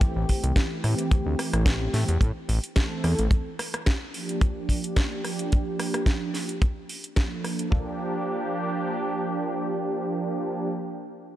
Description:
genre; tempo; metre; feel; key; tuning
nu-disco, nu disco; 109 BPM; 4/4; swing 53% on 16ths; G dorian; A4 = 440 Hz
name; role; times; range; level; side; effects
warm analog pad; accompaniment; 0.0-10.7 s; E3 to A4; -29 LUFS; right 1 dB; chorus, vintage 12-bit sampler grit, sidechain pumping, digital delay
fat analog bass; bass; 0.0-3.3 s; A1 to A2; -24 LUFS; equal; sidechain pumping
damped 70s drum kit; drums; 0.0-7.9 s; kick drum, toms; -22 LUFS; equal; none
house drum kit; drums; 0.0-7.7 s; hi-hat, rim click, snare drum; -32 LUFS; equal; none
room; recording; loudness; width
light reverb, small room reverb; dark, warm production; -24 LUFS; side -13 dB against mid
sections
0.0-7.7 A section; 7.7-9.9 B section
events
filter sweep on analog synth pad 0.0-7.7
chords
0.0 Am7; 3.3 Gm7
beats
0.01 0.56 | 1.11 1.66 2.21 2.76 | 3.31 3.86 4.41 4.96 | 5.51 6.07 6.62 7.17 | 7.72 8.27 8.82 9.37

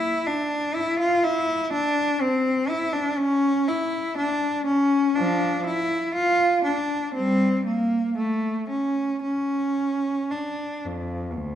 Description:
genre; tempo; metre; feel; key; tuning
classical, baroque-style suite movement for unaccompanied cello; 55-62 BPM; 4/4; rubato; D minor; A4 = 440 Hz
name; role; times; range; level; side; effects
clear cello; solo; 0.0-11.6 s; D2 to F4; -22 LUFS; equal; none
room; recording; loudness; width
wet recital hall reverb, RT60 1.3 s; dark, warm production; -21 LUFS; side -10 dB against mid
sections
0.0-11.6 A section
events
none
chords
none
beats
0.29 | 1.26 2.22 3.21 4.19 | 5.16 6.15 7.14 8.16 | 9.21 10.30 11.39

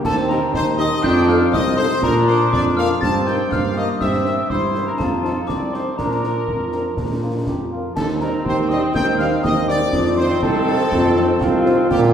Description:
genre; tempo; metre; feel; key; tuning
military-style march for wind band; 121 BPM; 2/4; straight; unclear; A4 = 440 Hz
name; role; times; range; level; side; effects
warm trumpet section; melody; 0.0-12.0 s; G4 to A5; -25 LUFS; equal; none
mellow hollow wooden piccolo; second line; 0.0-12.0 s; G5 to A6; -28 LUFS; left 2 dB; none
clear trombone section; sustained chords; 0.0-12.1 s; D3 to G4; -24 LUFS; right 2 dB; none
mellow tuba; bass; 0.0-12.1 s; C2 to Bb2; -20 LUFS; right 1 dB; none
concert snare drum, clash cymbals and concert bass drum; drums; 0.0-12.1 s; none; -26 LUFS; equal; none
glockenspiel with soft plastic mallets; second line; 0.1-7.7 s; A5 to A6; -26 LUFS; left 5 dB; none
dark French horn section; accompaniment; 0.3-11.7 s; F3 to C5; -28 LUFS; left 2 dB; none
clear euphonium; second line; 8.5-12.1 s; C4 to G4; -22 LUFS; right 2 dB; none
room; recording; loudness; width
wet scoring stage reverb, RT60 1.8 s; heard from further back in the room; -16 LUFS; side -8 dB against mid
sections
0.0-8.0 A section; 8.0-12.1 A section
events
none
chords
0.1 Cm/Eb; 1.0 F7; 2.0 Bb; 3.0 Eb/G; 4.0 C7/G; 5.0 F5; 6.0 Bb; 8.0 Cm/Eb; 9.9 F7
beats
| 0.05 0.54 | 1.04 1.53 | 2.03 2.52 | 3.02 3.51 | 4.01 4.50 | 5.00 5.49 | 5.98 6.48 | 6.97 7.47 | 7.96 8.45 | 8.95 9.44 | 9.94 10.43 | 10.92 11.41 | 11.91

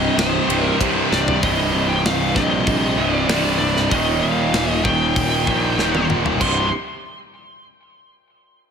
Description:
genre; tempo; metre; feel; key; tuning
heavy metal; 96 BPM; 4/4; straight; C minor; A4 = 443 Hz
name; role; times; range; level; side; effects
high-gain lead guitar; melody; 0.0-6.7 s; C5 to C6; -23 LUFS; equal; distortion, slapback echo, tape echo
rich symphonic string section; sustained chords; 0.0-1.4 s; none; barely audible; none; none
heavy high-gain guitar; riff; 0.0-6.7 s; C2 to Eb3; -22 LUFS; right 10 dB; distortion, slapback echo
scooped high-gain guitar; riff; 0.0-6.7 s; C2 to Eb3; -23 LUFS; left 11 dB; distortion, slapback echo
fuzz picked electric bass; bass; 0.0-6.7 s; C1 to C2; -24 LUFS; equal; overdrive
tight metal drum kit; drums; 0.2-6.6 s; crash cymbal, hi-hat, kick drum, ride cymbal, snare drum, toms; -24 LUFS; left 1 dB; none
room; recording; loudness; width
moderate scoring stage reverb, RT60 1.8 s; big arena sound; -16 LUFS; side -7 dB against mid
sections
0.0-1.4 A section; 1.4-6.4 B section; 6.4-8.7 C section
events
half time 0.0-1.4; drum fill 1.1-1.4, 5.8-6.4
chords
0.0 Cm; 3.9 Eb; 6.4 C5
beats
0.18 0.80 | 1.42 2.04 2.67 3.29 | 3.91 4.54 5.16 5.79 | 6.41

